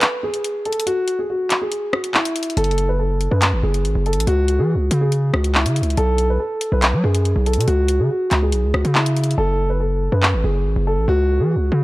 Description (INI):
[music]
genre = hip hop, drill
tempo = 141 BPM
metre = 4/4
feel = half-time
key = C# minor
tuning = A4 = 439 Hz
[part]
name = dark concert grand piano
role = melody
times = 0.0-11.8 s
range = E4 to B4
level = -21 LUFS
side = equal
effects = tape echo
[part]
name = drill drum kit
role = drums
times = 0.0-10.3 s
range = handclaps, hi-hat, rim click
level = -20 LUFS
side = equal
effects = none
[part]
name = distorted 808-style bass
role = bass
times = 2.6-11.8 s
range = F#1 to F#3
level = -18 LUFS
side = equal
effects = distortion
[sound]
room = digital ambience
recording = dark, warm production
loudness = -16 LUFS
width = side -19 dB against mid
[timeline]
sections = 0.0-11.8 A section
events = break 0.0-2.6; hi-hats muted 9.4-11.8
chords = 0.0 N.C.; 2.6 F#m; 4.3 C#m; 6.0 B5; 7.7 C#m; 9.4 F#m; 11.1 C#m